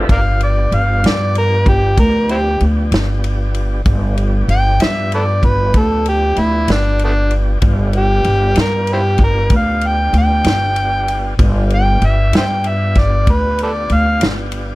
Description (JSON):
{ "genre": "slow blues", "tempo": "64 BPM (dotted quarters)", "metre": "12/8", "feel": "straight", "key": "G mixolydian", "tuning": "A4 = 440 Hz", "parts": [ { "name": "tonewheel organ", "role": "sustained chords", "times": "0.0-14.8 s", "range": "F3 to C5", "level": "-26 LUFS", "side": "equal", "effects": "slow rotary speaker, plate reverb" }, { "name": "upright bass", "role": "bass", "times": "0.0-14.8 s", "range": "G1 to G2", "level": "-15 LUFS", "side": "equal", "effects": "none" }, { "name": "overdriven harmonica", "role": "melody", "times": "0.1-14.2 s", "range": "A3 to G5", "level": "-17 LUFS", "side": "equal", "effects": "slapback echo, plate reverb" }, { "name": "natural country drum kit", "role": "drums", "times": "0.1-14.7 s", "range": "kick drum, ride cymbal, snare drum", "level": "-16 LUFS", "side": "equal", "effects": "none" } ], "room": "little or no reverb", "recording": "none", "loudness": "-12 LUFS", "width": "side -19 dB against mid", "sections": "0.1-14.8 A section", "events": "harmonica solo 0.1-14.8", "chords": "0.1 G7", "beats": "| 0.10 1.04 1.98 2.92 | 3.86 4.80 5.74 6.68 | 7.62 8.56 9.51 10.45 | 11.39 12.33 13.28 14.22" }